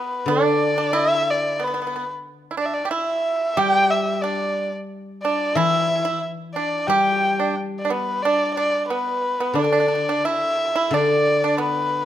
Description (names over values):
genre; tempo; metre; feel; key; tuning
chinese traditional; 90 BPM; 4/4; straight; unclear; A4 = 441 Hz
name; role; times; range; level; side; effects
warm erhu; melody; 0.0-12.1 s; B4 to G5; -22 LUFS; left 1 dB; none
pipa; second line; 0.0-12.1 s; B3 to G4; -24 LUFS; right 5 dB; none
guzheng; accompaniment; 0.3-12.1 s; D3 to G3; -25 LUFS; left 2 dB; none
room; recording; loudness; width
light reverb; close, detailed microphones; -19 LUFS; side -11 dB against mid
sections
0.0-12.1 A section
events
none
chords
none